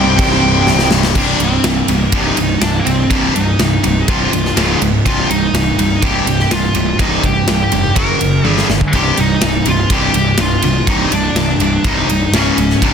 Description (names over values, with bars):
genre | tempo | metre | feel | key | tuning
heavy metal | 124 BPM | 4/4 | straight | C minor | A4 = 440 Hz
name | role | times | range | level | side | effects
high-gain lead guitar | melody | 0.0-12.9 s | Bb3 to G5 | -18 LUFS | left 1 dB | distortion
nasal lead guitar with a parked wah | second line | 0.0-0.9 s | C4 | -20 LUFS | equal | overdrive
pipe organ, foundations | sustained chords | 0.0-1.2 s | none | barely audible | none | none
biting overdriven guitar | riff | 0.0-1.2 s | C2 to C3 | -22 LUFS | left 1 dB | none
high-gain distorted guitar | riff | 0.0-12.9 s | C2 to G3 | -19 LUFS | left 12 dB | distortion
high-gain distorted guitar | riff | 0.0-12.9 s | C2 to G3 | -18 LUFS | right 9 dB | distortion
fuzz picked electric bass | bass | 0.0-12.9 s | C1 to C2 | -18 LUFS | left 1 dB | overdrive
big rock drum kit | drums | 0.2-12.9 s | crash cymbal, kick drum, ride cymbal, snare drum, toms | -17 LUFS | equal | none
room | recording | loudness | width
light reverb | dense, heavily limited modern master | -11 LUFS | side -7 dB against mid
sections
0.0-1.2 A section; 1.2-12.9 B section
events
drum fill 0.7-1.2, 8.4-8.9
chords
0.0 Cm; 4.6 Db5; 5.1 Cm; 8.0 F#5; 8.4 G5; 8.9 Cm; 12.3 Db5